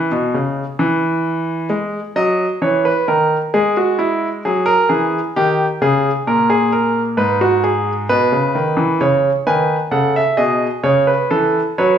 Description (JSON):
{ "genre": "classical, baroque-style 3-part fugue for grand piano", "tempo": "66 BPM", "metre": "4/4", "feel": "straight", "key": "unclear", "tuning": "A4 = 439 Hz", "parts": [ { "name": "bright grand piano", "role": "solo", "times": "0.0-12.0 s", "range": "G#2 to G#5", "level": "-14 LUFS", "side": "right 1 dB", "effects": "none" } ], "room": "moderate large studio reverb, RT60 1.2 s", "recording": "studio reverb", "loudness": "-14 LUFS", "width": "side -8 dB against mid", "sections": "0.0-12.0 A section", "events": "none", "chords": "0.0 N.C.; 1.7 G#m; 3.5 Eadd9; 5.4 D#7; 7.2 G#m; 9.0 C#5; 10.8 D#m7b5/C# (rootless)", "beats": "0.80 | 1.71 2.62 3.53 4.45 | 5.36 6.27 7.18 8.09 | 9.01 9.93 10.84 11.76" }